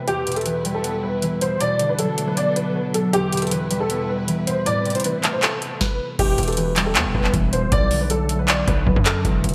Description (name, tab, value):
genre	hip hop, trap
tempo	157 BPM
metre	4/4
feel	half-time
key	E minor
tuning	A4 = 439 Hz
part	dark baby grand piano	melody	0.0-9.2 s	G4 to D5	-26 LUFS	equal	ensemble chorus
part	concert harp	accompaniment	0.0-9.5 s	E2 to B3	-26 LUFS	equal	none
part	warm studio string section	sustained chords	0.0-5.8 s	B2 to B4	-35 LUFS	equal	none
part	booming analog drum machine	drums	0.1-9.5 s	crash cymbal, handclaps, hi-hat, kick drum, snare drum	-24 LUFS	equal	gated reverb
part	distorted 808-style bass	bass	6.2-9.5 s	D1 to F#2	-26 LUFS	equal	distortion
room	moderate lush hall reverb, RT60 1.6 s, studio reverb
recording	bright 1980s-style digital production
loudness	-21 LUFS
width	mono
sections	0.1-6.2 A section; 6.2-9.5 B section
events	break 9.2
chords	0.1 Em; 1.6 Bm7; 3.1 Em; 4.7 Amadd9; 6.2 Em; 7.7 Bm7